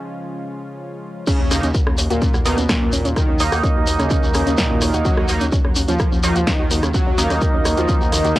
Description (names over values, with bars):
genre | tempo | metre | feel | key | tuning
melodic techno | 127 BPM | 4/4 | straight | Eb minor | A4 = 440 Hz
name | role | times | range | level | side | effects
warm analog pad | sustained chords | 0.0-8.4 s | Db3 to Gb4 | -32 LUFS | equal | none
wide unison lead | melody | 1.3-8.4 s | Bb3 to Gb4 | -26 LUFS | equal | sidechain pumping, cassette tape, analog delay
soft supersaw | second line | 1.3-8.4 s | Bb2 to Gb3 | -26 LUFS | equal | sidechain pumping, cassette tape, analog delay
soft round pluck | arpeggios | 1.3-8.4 s | Db4 to Db6 | -27 LUFS | equal | chorus, vintage 12-bit sampler grit, sidechain pumping, cassette tape, analog delay
electronic kick drum | drums | 1.3-8.4 s | none | -19 LUFS | equal | high-pass filter on kick, cassette tape, high-pass filter on room
techno drum kit | drums | 1.3-8.4 s | crash cymbal, hi-hat, rim click, snare drum | -25 LUFS | equal | cassette tape
shekere | percussion | 1.3-8.4 s | none | -27 LUFS | left 1 dB | none
round analog bass | bass | 1.4-8.3 s | Eb2 | -23 LUFS | equal | sidechain pumping
sync-sweep polysynth | stabs | 1.5-8.4 s | Eb3 to Eb4 | -22 LUFS | right 2 dB | chorus, sidechain pumping, cassette tape, analog delay
room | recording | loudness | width
light reverb | home recording on cassette | -15 LUFS | side -16 dB against mid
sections
0.0-1.3 A section; 1.3-8.4 B section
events
break 0.0-1.3; build-up 0.0-1.3; drop 1.3-8.4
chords
0.0 Db; 1.3 Ebm7